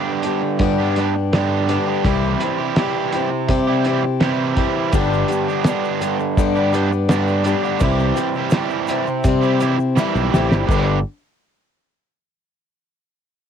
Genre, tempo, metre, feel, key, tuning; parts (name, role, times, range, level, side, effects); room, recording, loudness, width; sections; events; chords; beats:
folk rock and heartland rock; 83 BPM; 4/4; straight; G major; A4 = 440 Hz
picked plugged-in swing-style acoustic guitar; accompaniment; 0.0-11.0 s; G2 to G4; -22 LUFS; left 12 dB; cassette tape
crunchy overdriven guitar; riff; 0.0-11.0 s; G2 to G4; -21 LUFS; right 10 dB; cassette tape
cloth-damped thuddy drum kit; drums; 0.2-10.9 s; crash cymbal, hi-hat, kick drum, snare drum; -20 LUFS; equal; cassette tape
modern bright fingered electric bass; bass; 0.6-11.0 s; G1 to C3; -20 LUFS; equal
egg shaker; percussion; 4.9-11.0 s; -43 LUFS; right 14 dB
light reverb; home recording on cassette; -16 LUFS; side -8 dB against mid
0.0-10.7 A section; 10.7-13.5 B section
drum fill 10.0-10.7
0.0 G; 2.1 C; 4.9 G; 7.8 C; 10.7 G
0.61 1.33 | 2.05 2.78 3.50 4.22 | 4.95 5.67 6.39 7.11 | 7.83 8.55 9.27 9.98 | 10.70